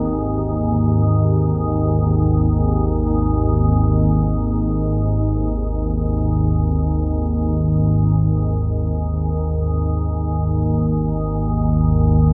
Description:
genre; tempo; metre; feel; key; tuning
ambient; free time; none; none; unclear; A4 = 440 Hz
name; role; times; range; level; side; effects
organ-like drone; solo; 0.0-12.3 s; G#1 to D#2; -18 LUFS; equal; ensemble chorus, built-in reverb
room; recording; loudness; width
wet cathedral reverb, RT60 6.6 s; none; -19 LUFS; mono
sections
0.0-4.4 A section; 4.4-12.3 B section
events
none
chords
0.0 G#5

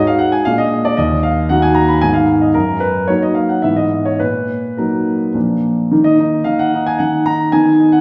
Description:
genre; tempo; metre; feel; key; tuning
classical-period piano sonatina; 102-117 BPM; 3/4; rubato; Eb minor; A4 = 440 Hz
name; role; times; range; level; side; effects
warm concert grand piano; solo; 0.0-8.0 s; Eb2 to Cb6; -15 LUFS; equal; none
room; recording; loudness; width
wet recital hall reverb, RT60 1.3 s; heard from further back in the room; -15 LUFS; mono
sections
0.0-5.9 A section; 5.9-8.0 B section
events
none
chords
0.5 Bb7; 1.0 Ebm; 2.0 Abm; 2.6 Ebm/Gb; 3.6 E/G#; 4.2 Ebm/Bb; 5.4 Bb; 5.9 Eb5

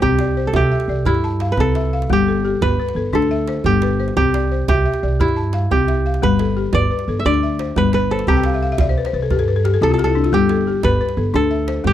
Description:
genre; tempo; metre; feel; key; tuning
west african traditional, West African string and xylophone music; 117 BPM (dotted quarters); 12/8; straight; G mixolydian; A4 = 440 Hz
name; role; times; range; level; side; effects
kora; melody; 0.0-11.9 s; E4 to E5; -20 LUFS; right 4 dB; none
balafon; arpeggios; 0.0-11.9 s; G3 to A5; -20 LUFS; left 9 dB; none
upright bass; bass; 0.0-11.9 s; G1 to G2; -20 LUFS; right 1 dB; none
djembe; percussion; 0.0-11.9 s; none; -24 LUFS; right 3 dB; none
room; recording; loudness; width
little or no reverb; dry, close 1970s-style studio recording; -15 LUFS; side -11 dB against mid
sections
0.0-11.9 A section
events
balafon fill 8.3-10.3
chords
0.0 C; 2.1 G; 4.2 C; 6.2 G; 8.3 C; 10.3 G

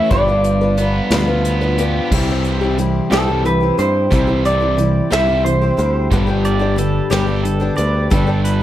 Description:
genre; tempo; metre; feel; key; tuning
folk rock and heartland rock; 60 BPM (dotted quarters); 6/8; straight; unclear; A4 = 439 Hz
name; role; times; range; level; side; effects
electric guitar through a small old amp; melody; 0.0-6.1 s; A4 to E5; -18 LUFS; right 1 dB; slapback echo
picked twelve-string acoustic guitar; accompaniment; 0.0-8.6 s; G2 to B4; -21 LUFS; left 4 dB; none
crunchy overdriven guitar; riff; 0.0-8.6 s; G2 to G4; -21 LUFS; right 1 dB; spring reverb
picked electric bass; bass; 0.1-8.6 s; G1 to G2; -19 LUFS; right 1 dB; none
soft brush drum kit; drums; 0.1-8.6 s; crash cymbal, hi-hat, kick drum, snare drum; -22 LUFS; equal; none
pedal steel guitar; second line; 6.5-8.6 s; G4 to D5; -24 LUFS; right 4 dB; none
room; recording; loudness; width
small room ambience; none; -14 LUFS; side -12 dB against mid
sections
0.0-2.1 A section; 2.1-8.6 B section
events
clean electric guitar solo 2.1-8.6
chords
0.1 G7; 2.1 C; 6.1 G

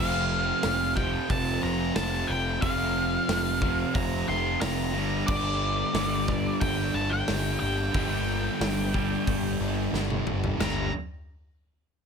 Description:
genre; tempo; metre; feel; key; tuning
quiet-loud alternative rock; 90 BPM; 4/4; straight; G minor; A4 = 440 Hz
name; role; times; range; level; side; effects
octave-fuzz lead guitar; melody; 0.0-10.9 s; D5 to C6; -30 LUFS; left 2 dB; distortion, slapback echo
crunchy overdriven guitar; riff; 0.0-10.9 s; F2 to F4; -34 LUFS; left 14 dB; none
crunchy overdriven guitar; riff; 0.0-10.9 s; F2 to G3; -34 LUFS; equal; none
thick fuzz guitar; riff; 0.0-10.9 s; F2 to C4; -32 LUFS; right 12 dB; distortion
fuzz picked electric bass; bass; 0.0-10.9 s; F1 to G1; -31 LUFS; equal; overdrive
big rock drum kit; drums; 0.6-10.8 s; crash cymbal, hi-hat, kick drum, snare drum, toms; -32 LUFS; equal; none
room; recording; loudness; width
light reverb; none; -24 LUFS; side -6 dB against mid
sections
0.0-10.6 A section; 10.6-12.1 B section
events
drum fill 9.9-10.6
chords
0.0 F; 5.0 Gm

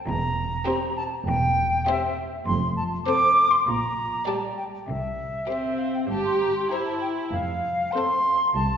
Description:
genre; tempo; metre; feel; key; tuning
cinematic, playful, whimsical film cue; 99 BPM; 4/4; straight; unclear; A4 = 441 Hz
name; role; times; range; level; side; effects
concert flute; second line; 0.1-8.8 s; E5 to D6; -24 LUFS; equal; none
rich chamber double bass section; bass; 0.1-8.8 s; E1 to C2; -31 LUFS; right 2 dB; none
rich studio cello section; bass; 0.1-8.8 s; C2 to C3; -34 LUFS; right 2 dB; none
clear chamber violin section; melody; 0.7-8.4 s; C5 to D5; -34 LUFS; left 4 dB; none
rich chamber violin section; second line; 0.7-8.4 s; G4 to A4; -34 LUFS; left 1 dB; none
rich chamber viola section; accompaniment; 0.7-8.4 s; G3 to G4; -29 LUFS; equal; none
room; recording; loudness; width
wet concert hall reverb, RT60 1.9 s; heard from further back in the room, nothing above 7.8 kHz; -22 LUFS; side -8 dB against mid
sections
0.0-8.8 A section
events
none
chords
0.1 C7/E; 2.5 F; 3.7 Gm/Bb; 4.9 C; 7.3 F

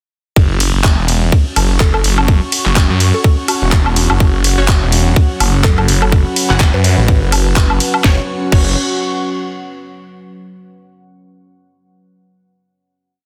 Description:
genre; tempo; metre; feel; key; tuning
bass house; 125 BPM; 4/4; swing 57% on 16ths; unclear; A4 = 439 Hz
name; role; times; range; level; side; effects
phased detuned saw bass; bass; 0.4-8.7 s; E1 to F#2; -16 LUFS; equal; phaser, tube saturation, sidechain pumping
electronic kick drum; drums; 0.4-8.6 s; none; -14 LUFS; equal; overdrive, studio reverb
garage drum kit; drums; 0.4-8.6 s; crash cymbal, handclaps, hi-hat, ride cymbal, snare drum, woodblock; -20 LUFS; equal; overdrive, studio reverb
airy breathy pad; texture; 1.3-9.9 s; C#4 to C#6; -25 LUFS; equal; chorus, sidechain pumping
mallet-like synth pluck; melody; 1.8-7.2 s; F#4 to B4; -28 LUFS; equal; chorus, phaser, tape echo
deep dark ambient pad; sustained chords; 5.0-8.3 s; F#3 to F#5; -27 LUFS; equal; chorus, built-in reverb, sidechain pumping
orchestra-hit-like synth stab; stabs; 4.6-8.7 s; C#4 to F#5; -26 LUFS; equal; built-in reverb, cassette tape, sidechain pumping, tape echo
room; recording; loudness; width
light reverb, digital ambience; dense, heavily limited modern master; -13 LUFS; mono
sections
0.4-8.0 drop; 8.0-10.0 final chord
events
drop 0.4-8.0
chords
0.4 F#5

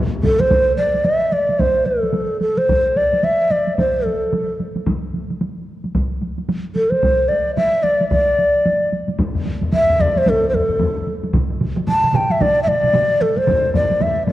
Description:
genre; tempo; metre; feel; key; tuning
japanese traditional, taiko drum ensemble; 111 BPM; 4/4; swing 60% on 16ths; D suspended pentatonic; A4 = 440 Hz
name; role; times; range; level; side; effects
breathy long shakuhachi; melody; 0.2-14.3 s; A4 to A5; -16 LUFS; equal; none
taiko ensemble; percussion; 0.2-14.3 s; none; -23 LUFS; right 1 dB; none
taiko ensemble; percussion; 0.2-0.4, 9.2-14.3 s; none; -23 LUFS; left 3 dB; none
taiko ensemble; percussion; 0.2-0.4, 11.3-13.1 s; none; -24 LUFS; right 3 dB; none
taiko ensemble; percussion; 0.2-13.6 s; none; -24 LUFS; equal; none
room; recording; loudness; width
wet concert hall reverb, RT60 2.3 s; worn, warbling old tape, cassette tape, warbly pitch drift; -15 LUFS; side -14 dB against mid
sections
0.5-14.3 A section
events
none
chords
none

